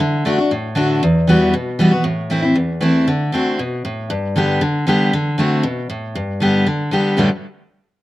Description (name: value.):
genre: bluegrass.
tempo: 234 BPM.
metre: 4/4.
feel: straight.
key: G major.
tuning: A4 = 441 Hz.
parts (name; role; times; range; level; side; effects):
picked steel-string acoustic guitar; solo; 0.0-7.3 s; E2 to G4; -15 LUFS; equal; none.
room: little or no reverb.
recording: recorded outdoors, with no room sound.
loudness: -15 LUFS.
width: side -16 dB against mid.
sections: 0.0-5.1 A section; 5.1-7.2 B section.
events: none.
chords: 0.0 D; 1.0 Emadd9; 2.0 Am; 3.1 D7; 4.1 G; 5.1 D7; 6.2 G; 7.2 Gadd9.